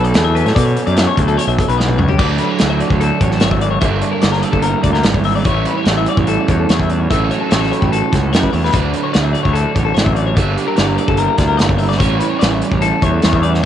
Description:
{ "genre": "math rock and midwest emo", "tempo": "147 BPM", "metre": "4/4", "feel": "straight", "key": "D major", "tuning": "A4 = 435 Hz", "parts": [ { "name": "twelve-string electric guitar", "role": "melody", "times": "0.0-1.8 s", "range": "A4", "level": "-23 LUFS", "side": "equal", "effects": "cassette tape, analog delay" }, { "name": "electric guitar through a small old amp", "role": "accompaniment", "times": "0.0-13.7 s", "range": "F#2 to B4", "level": "-24 LUFS", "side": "right 9 dB", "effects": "cassette tape" }, { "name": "twelve-string electric guitar", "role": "arpeggios", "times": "0.0-13.7 s", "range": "G4 to E5", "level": "-20 LUFS", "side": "left 10 dB", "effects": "spring reverb, cassette tape, analog delay" }, { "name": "fuzz fingered electric bass", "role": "bass", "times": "0.0-13.6 s", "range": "G1 to B2", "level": "-17 LUFS", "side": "equal", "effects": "overdrive" }, { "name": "loose indie drum kit", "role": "drums", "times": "0.0-13.6 s", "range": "crash cymbal, hi-hat, kick drum, snare drum, toms", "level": "-17 LUFS", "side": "equal", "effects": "cassette tape" }, { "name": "crunchy overdriven guitar", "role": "riff", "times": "2.2-13.6 s", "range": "G2 to A4", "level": "-20 LUFS", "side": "right 10 dB", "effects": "cassette tape" } ], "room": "small room ambience", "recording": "home recording on cassette, nothing above 10.8 kHz", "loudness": "-12 LUFS", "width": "side -10 dB against mid", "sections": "0.0-2.2 A section; 2.2-13.7 B section", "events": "drum fill 1.8-2.2", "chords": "0.0 Bm11; 2.2 Dmaj7; 3.8 Gm6; 5.5 A13; 7.1 F#m7/A; 8.7 Dmaj7; 10.4 Gm6; 12.0 A7" }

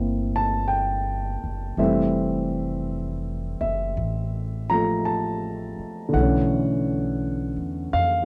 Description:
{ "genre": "jazz ballad", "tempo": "55 BPM", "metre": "4/4", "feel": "swing 67% on 8ths", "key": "unclear", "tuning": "A4 = 440 Hz", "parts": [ { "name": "warm grand piano", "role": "accompaniment", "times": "0.0-8.2 s", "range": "D3 to Bb5", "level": "-26 LUFS", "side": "equal", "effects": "none" }, { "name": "upright bass", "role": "bass", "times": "0.0-8.2 s", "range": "F1 to F2", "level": "-30 LUFS", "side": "equal", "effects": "none" } ], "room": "small room ambience", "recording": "dry, close 1970s-style studio recording", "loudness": "-25 LUFS", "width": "mono", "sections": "0.0-8.2 A section", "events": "none", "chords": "0.0 C13; 1.8 Fmaj7; 6.1 Bm11" }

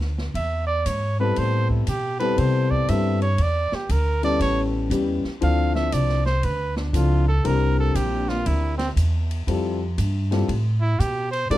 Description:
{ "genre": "jazz, small-group swing and bop", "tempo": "118 BPM", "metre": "4/4", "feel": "swing 66% on 8ths", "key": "unclear", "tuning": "A4 = 439 Hz", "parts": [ { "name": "upright bass", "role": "bass", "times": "0.0-11.6 s", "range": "A1 to C3", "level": "-22 LUFS", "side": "equal", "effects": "none" }, { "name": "swinging big-band drum kit", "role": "drums", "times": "0.0-11.6 s", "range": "hi-hat, kick drum, ride cymbal, snare drum", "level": "-35 LUFS", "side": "equal", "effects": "none" }, { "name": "breathy trumpet", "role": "second line", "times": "0.4-11.6 s", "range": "C4 to F5", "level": "-25 LUFS", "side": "right 3 dB", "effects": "none" }, { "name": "dark upright piano", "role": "accompaniment", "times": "1.2-11.6 s", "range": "F3 to Bb4", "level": "-25 LUFS", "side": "left 5 dB", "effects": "none" } ], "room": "light reverb", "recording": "dark, warm production", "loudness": "-20 LUFS", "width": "side -14 dB against mid", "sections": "0.0-11.6 A section", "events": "trumpet solo 0.0-11.6", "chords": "0.3 E; 1.4 Am7; 3.4 Em7; 4.4 A7; 5.4 Dm7; 7.4 C7; 9.5 Fmaj7" }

